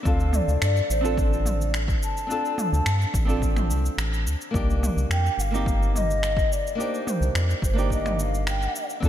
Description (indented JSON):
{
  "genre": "sunset chillout",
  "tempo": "107 BPM",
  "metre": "4/4",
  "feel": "straight",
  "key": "C dorian",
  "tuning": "A4 = 440 Hz",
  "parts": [
    { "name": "flamenco guitar", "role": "accompaniment", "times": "0.0-9.1 s", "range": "Bb3 to A4", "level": "-30 LUFS", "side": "moving between left 3 dB and right 5 dB", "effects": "auto-pan, vintage 12-bit sampler grit, low-pass filter, ping-pong delay, slapback echo" },
    { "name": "mellow hollow baroque flute", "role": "melody", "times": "0.1-8.9 s", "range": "C5 to A5", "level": "-29 LUFS", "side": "left 1 dB", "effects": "tape echo, slapback echo" },
    { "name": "round analog bass", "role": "bass", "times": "0.1-9.1 s", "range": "G1 to G2", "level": "-24 LUFS", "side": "equal", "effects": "none" },
    { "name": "deep house drum kit", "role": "drums", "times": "0.1-9.1 s", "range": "finger snaps, shaker, toms", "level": "-31 LUFS", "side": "equal", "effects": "overdrive, slapback echo" },
    { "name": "electronic kick drum", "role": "drums", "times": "0.1-9.1 s", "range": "none", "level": "-26 LUFS", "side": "equal", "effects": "overdrive" }
  ],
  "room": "light reverb, digital ambience",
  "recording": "none",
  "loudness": "-21 LUFS",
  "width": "side -11 dB against mid",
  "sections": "0.0-9.1 A section",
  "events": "none",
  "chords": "0.1 Dm7; 4.5 Cm7"
}